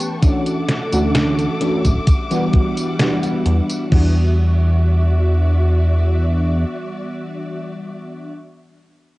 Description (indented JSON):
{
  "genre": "vaporwave",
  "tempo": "65 BPM",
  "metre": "4/4",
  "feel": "straight",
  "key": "E dorian",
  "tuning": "A4 = 440 Hz",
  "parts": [
    { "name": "FM electric piano with soft pad layer", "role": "accompaniment", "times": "0.0-8.3 s", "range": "E3 to G4", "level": "-22 LUFS", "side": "equal", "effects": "phaser, ensemble chorus, cassette tape, analog delay" },
    { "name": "warm studio string section", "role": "sustained chords", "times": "0.0-8.3 s", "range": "G3 to D6", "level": "-28 LUFS", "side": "equal", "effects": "cassette tape" },
    { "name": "detuned 8-bit digital drum machine", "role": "drums", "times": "0.0-4.1 s", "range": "crash cymbal, hi-hat, snare drum, tambourine", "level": "-23 LUFS", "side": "equal", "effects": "cassette tape" },
    { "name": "electronic kick drum", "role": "drums", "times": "0.2-4.1 s", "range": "none", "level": "-14 LUFS", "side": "equal", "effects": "overdrive, cassette tape" },
    { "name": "chorused synth bass", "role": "bass", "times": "0.9-6.7 s", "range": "D1 to E2", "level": "-15 LUFS", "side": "equal", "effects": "none" }
  ],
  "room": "light reverb",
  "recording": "home recording on cassette, nothing above 10.6 kHz",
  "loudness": "-14 LUFS",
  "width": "side -19 dB against mid",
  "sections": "0.0-3.9 A section; 3.9-7.6 B section",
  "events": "none",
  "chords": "0.2 Dmaj9; 2.1 Em9",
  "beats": "| 0.23 1.15 2.08 3.00 | 3.92 4.84 5.77 6.69"
}